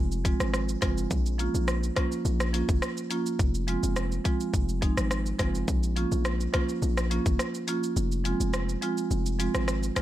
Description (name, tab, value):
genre	dancehall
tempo	105 BPM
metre	4/4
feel	straight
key	Bb minor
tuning	A4 = 440 Hz
part	hard-hitting 808-style bass	bass	0.0-10.0 s	F1 to Bb1	-29 LUFS	left 1 dB	none
part	island pop drum kit	drums	0.1-10.0 s	hi-hat, kick drum, rim click, shaker	-29 LUFS	equal	none
part	marimba with medium mallets	accompaniment	0.2-10.0 s	F3 to F4	-30 LUFS	right 3 dB	none
room	little or no reverb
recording	none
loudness	-25 LUFS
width	side -13 dB against mid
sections	0.0-10.0 A section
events	kick muted 8.0-10.0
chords	0.0 Fm; 1.1 Bbm; 3.4 Fm; 5.7 Bbm; 8.0 Fm